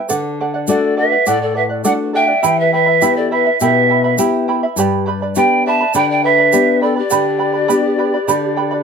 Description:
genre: andean folk, Andean ensemble.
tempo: 102 BPM.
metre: 4/4.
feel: straight.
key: unclear.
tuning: A4 = 440 Hz.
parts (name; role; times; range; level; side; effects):
charango; accompaniment; 0.0-8.8 s; E4 to B5; -19 LUFS; right 7 dB; none.
nylon-string guitar; accompaniment; 0.1-8.8 s; G2 to G4; -19 LUFS; left 6 dB; none.
egg shaker; percussion; 0.1-8.4 s; none; -24 LUFS; right 4 dB; none.
reedy pan flute; melody; 0.7-8.8 s; D5 to A5; -16 LUFS; right 4 dB; none.
breathy polished pan flute; second line; 0.7-8.8 s; G4 to E5; -20 LUFS; left 6 dB; tape echo.
room: moderate studio reverb, RT60 0.6 s.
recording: dark, warm production.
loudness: -12 LUFS.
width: side -6 dB against mid.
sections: 0.1-8.8 A section.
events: none.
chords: 0.1 D; 2.4 Em; 4.8 G.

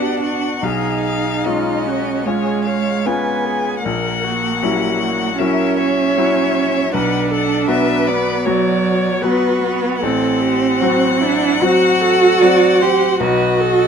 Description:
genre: classical, slow romantic movement for piano quartet.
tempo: 76 BPM.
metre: 4/4.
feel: rubato.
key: unclear.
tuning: A4 = 440 Hz.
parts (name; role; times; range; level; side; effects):
rich violin; melody; 0.0-13.9 s; B4 to G#5; -22 LUFS; left 8 dB; none.
rich cello; second line; 0.0-13.9 s; F#3 to G4; -17 LUFS; right 4 dB; none.
bright grand piano; accompaniment; 0.0-13.9 s; A1 to F#4; -20 LUFS; left 4 dB; none.
rich viola; accompaniment; 0.0-13.9 s; E4 to D5; -23 LUFS; right 3 dB; none.
room: light reverb.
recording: none.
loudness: -14 LUFS.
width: side -7 dB against mid.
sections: 0.0-13.9 A section.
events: none.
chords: 0.0 Bm; 0.6 C#7/B; 3.8 F#7/A#; 6.9 Bm; 10.0 F#dim/A; 13.2 B7.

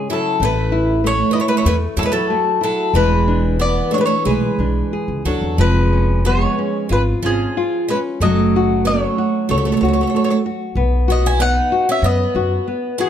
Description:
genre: fado-style ballad.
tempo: 93 BPM.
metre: 4/4.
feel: rubato.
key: E major.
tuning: A4 = 439 Hz.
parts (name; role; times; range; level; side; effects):
mandolin; melody; 0.0-13.1 s; G#4 to G#5; -20 LUFS; left 1 dB; none.
picked twelve-string acoustic guitar; second line; 0.0-13.1 s; E3 to E4; -21 LUFS; right 7 dB; none.
nylon-string guitar; accompaniment; 0.0-13.1 s; C#3 to A4; -21 LUFS; left 6 dB; none.
upright bass; bass; 0.4-12.6 s; E1 to F#2; -18 LUFS; equal; none.
room: light reverb.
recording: close, detailed microphones.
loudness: -15 LUFS.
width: side -9 dB against mid.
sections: 0.0-13.1 A section.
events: none.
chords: 0.4 A5; 2.9 E7; 5.6 C#7/E#; 8.2 F#m; 10.8 B.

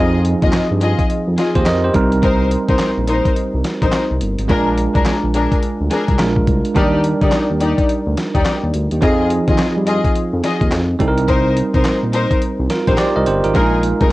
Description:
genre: R&B, new jack swing.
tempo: 106 BPM.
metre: 4/4.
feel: swing 62% on 16ths.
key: unclear.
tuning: A4 = 441 Hz.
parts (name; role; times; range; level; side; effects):
bell-like tine electric piano; accompaniment; 0.0-14.1 s; F3 to Eb5; -18 LUFS; right 3 dB; medium stereo tremolo.
warm studio string section; stabs; 0.0-14.1 s; D4 to Eb5; -20 LUFS; left 3 dB; none.
smooth gliding synth bass; bass; 0.0-14.1 s; G1 to G2; -19 LUFS; equal; none.
dusty soul sampler-style drum kit; drums; 0.2-14.1 s; handclaps, hi-hat, kick drum, snare drum; -18 LUFS; equal; cassette tape.
room: little or no reverb.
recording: home recording on cassette.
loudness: -14 LUFS.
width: side -18 dB against mid.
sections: 0.0-14.1 A section.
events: none.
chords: 0.0 Fm7; 1.9 Cm7; 4.5 Bb7; 6.8 Ebmaj7; 9.0 Fm7; 11.0 Cm7; 13.6 Bb7sus4.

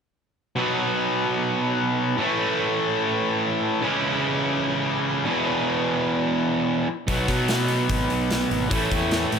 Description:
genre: classic rock.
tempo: 147 BPM.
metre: 4/4.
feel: straight.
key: unclear.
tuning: A4 = 441 Hz.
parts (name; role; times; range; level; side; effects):
distorted electric guitar; riff; 0.6-9.4 s; E2 to G#4; -24 LUFS; right 7 dB; distortion.
overdriven electric guitar; riff; 0.6-9.4 s; E2 to C#4; -25 LUFS; left 10 dB; none.
fuzz fingered electric bass; bass; 7.1-9.4 s; G#1 to B2; -27 LUFS; left 1 dB; overdrive.
big rock drum kit; drums; 7.1-9.4 s; hi-hat, kick drum, snare drum; -26 LUFS; left 1 dB; none.
room: moderate echo chamber reverb, RT60 1.3 s, studio ambience.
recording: none.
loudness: -21 LUFS.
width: side -6 dB against mid.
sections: 0.6-9.4 A section.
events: none.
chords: 0.6 B; 2.2 A; 3.8 C#m; 5.3 E; 7.1 B; 8.7 A.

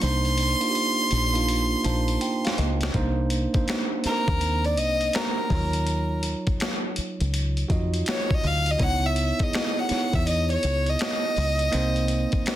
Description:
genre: R&B, neo-soul.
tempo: 82 BPM.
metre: 4/4.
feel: swing 64% on 16ths.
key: unclear.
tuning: A4 = 440 Hz.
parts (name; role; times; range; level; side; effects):
rich violin; melody; 0.0-12.6 s; Bb4 to C6; -26 LUFS; equal; slapback echo.
bell-like tine electric piano; accompaniment; 0.0-12.6 s; Gb3 to A5; -29 LUFS; right 3 dB; none.
deep dub fingered electric bass; bass; 0.0-12.4 s; Bb1 to F2; -25 LUFS; equal; none.
boom bap sampler-style drum kit; drums; 0.0-12.6 s; finger snaps, hi-hat, kick drum, snare drum; -28 LUFS; left 1 dB; none.
room: light reverb.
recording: dense, heavily limited modern master.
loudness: -22 LUFS.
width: side -13 dB against mid.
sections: 0.0-2.9 A section; 2.9-12.6 B section.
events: drum fill 0.0-2.9; tine electric piano fill 1.5-2.9; violin solo 2.9-12.6.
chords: 0.0 Cm9; 5.5 Ebm9; 8.8 Dbm9; 11.7 Cm7.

